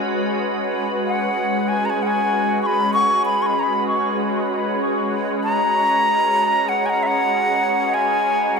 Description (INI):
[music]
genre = ambient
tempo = 96 BPM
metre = 4/4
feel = swing 56% on 16ths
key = unclear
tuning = A4 = 440 Hz
[part]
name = soft additive organ-like pad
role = sustained chords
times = 0.0-8.6 s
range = G#3 to B4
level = -21 LUFS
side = equal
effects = ensemble chorus, built-in reverb
[part]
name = bright wooden flute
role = melody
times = 1.1-8.6 s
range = E5 to C#6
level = -19 LUFS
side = equal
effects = dub echo
[sound]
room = wet concert hall reverb, RT60 2.3 s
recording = none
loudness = -17 LUFS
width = side -4 dB against mid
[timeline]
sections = 0.0-8.6 A section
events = none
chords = 0.0 C#5/G#